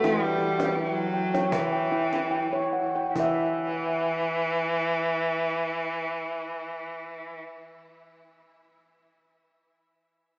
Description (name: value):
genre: world meditative, meditative tuned percussion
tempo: 69-84 BPM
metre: 4/4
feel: straight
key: E kumoi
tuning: A4 = 440 Hz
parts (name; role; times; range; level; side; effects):
- bright cello; melody; 0.0-7.4 s; E3 to G3; -27 LUFS; equal; shimmer reverb
- handpan; arpeggios; 0.0-8.2 s; E3 to G5; -27 LUFS; equal; shimmer reverb, tape echo
- cajon; percussion; 0.0-3.6 s; none; -34 LUFS; equal; none
room: wet church reverb, RT60 2.9 s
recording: worn, warbling old tape, cassette tape, warbly pitch drift, small speaker sound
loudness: -24 LUFS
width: side -39 dB against mid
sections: 0.0-3.2 A section; 3.2-6.6 B section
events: slowing down 0.0-3.2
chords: 0.0 Em; 3.2 N.C.